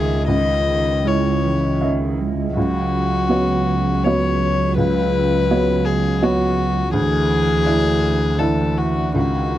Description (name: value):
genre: neoclassical piano and strings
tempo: 81 BPM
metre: 3/4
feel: uneven beats, rubato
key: unclear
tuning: A4 = 440 Hz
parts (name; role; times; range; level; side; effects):
- warm violin; melody; 0.0-9.6 s; F#4 to D#5; -22 LUFS; left 4 dB; none
- dark cello; second line; 0.0-9.6 s; D#3 to G#3; -23 LUFS; right 6 dB; slapback echo
- felt-muted upright piano; accompaniment; 0.0-9.6 s; C#2 to E5; -22 LUFS; right 1 dB; none
- rich double bass; bass; 0.0-9.6 s; C#2 to D2; -22 LUFS; equal; none
room: light reverb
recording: dry, close 1970s-style studio recording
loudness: -16 LUFS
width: side -13 dB against mid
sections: 0.0-9.6 A section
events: none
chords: 0.0 C#madd9; 2.6 F#sus4/C#; 6.9 Dsus2